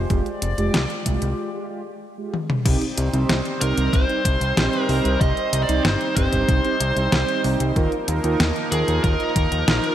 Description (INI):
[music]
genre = synthwave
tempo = 94 BPM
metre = 4/4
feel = straight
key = C minor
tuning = A4 = 444 Hz
[part]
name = chorused pulse-width pad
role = sustained chords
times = 0.0-9.9 s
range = F3 to D5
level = -28 LUFS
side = right 1 dB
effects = sidechain pumping
[part]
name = mellow synth brass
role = stabs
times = 0.0-9.9 s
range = Ab3 to Bb4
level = -26 LUFS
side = right 3 dB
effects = chorus, digital delay
[part]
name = fat analog bass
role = bass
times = 0.0-9.8 s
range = F1 to Eb2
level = -23 LUFS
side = equal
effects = none
[part]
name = detuned 8-bit digital drum machine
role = drums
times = 0.1-9.9 s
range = crash cymbal, hi-hat, snare drum, toms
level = -24 LUFS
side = equal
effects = overdrive
[part]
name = electronic kick drum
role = drums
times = 0.1-9.5 s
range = none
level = -21 LUFS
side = equal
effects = overdrive
[part]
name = bluesy overdriven lead guitar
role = melody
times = 3.6-9.9 s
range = Ab4 to Eb5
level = -25 LUFS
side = equal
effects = distortion, digital delay
[sound]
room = moderate lush hall reverb, RT60 2.1 s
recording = bright 1980s-style digital production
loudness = -18 LUFS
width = side -11 dB against mid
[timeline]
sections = 0.0-2.7 A section; 2.7-9.9 B section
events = break 1.4-2.7; drum fill 2.3-2.7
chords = 0.0 Fmadd9; 2.7 Cm; 7.8 Ebsus2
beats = | 0.10 0.74 1.38 2.02 | 2.65 3.29 3.93 4.57 | 5.21 5.85 6.49 7.12 | 7.76 8.40 9.04 9.68